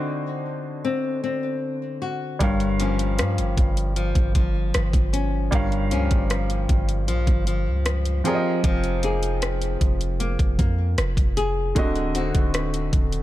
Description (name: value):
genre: contemporary R&B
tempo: 77 BPM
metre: 4/4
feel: straight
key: unclear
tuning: A4 = 441 Hz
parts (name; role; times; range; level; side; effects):
- warm baby grand piano; accompaniment; 0.0-13.2 s; D3 to F5; -30 LUFS; right 3 dB; none
- flamenco guitar; arpeggios; 0.0-13.2 s; G2 to Ab4; -26 LUFS; left 3 dB; digital delay
- long sustained 808-style bass; bass; 2.4-13.2 s; D1 to G2; -24 LUFS; equal; none
- smooth R&B drum kit; drums; 2.4-13.2 s; hi-hat, kick drum, rim click; -23 LUFS; equal; none
room: small room ambience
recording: dark, warm production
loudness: -20 LUFS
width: side -14 dB against mid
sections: 0.0-13.2 A section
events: none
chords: 0.0 D7b9; 2.4 Gm7b5; 8.3 Fm11; 11.8 D7b9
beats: 0.07 0.85 1.63 | 2.41 3.19 3.97 4.75 | 5.52 6.30 7.08 7.86 | 8.64 9.42 10.20 10.98 | 11.76 12.54